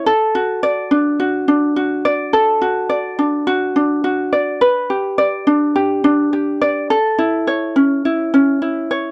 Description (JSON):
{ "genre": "pop", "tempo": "105 BPM", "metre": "4/4", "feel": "straight", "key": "D major", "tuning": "A4 = 440 Hz", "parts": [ { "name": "ukulele", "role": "solo", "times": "0.0-9.1 s", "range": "C#4 to D5", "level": "-17 LUFS", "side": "equal", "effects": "none" } ], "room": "light reverb", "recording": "dry, close 1970s-style studio recording", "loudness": "-17 LUFS", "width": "mono", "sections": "0.0-9.1 A section", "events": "none", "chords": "0.1 D; 4.6 G; 6.9 A" }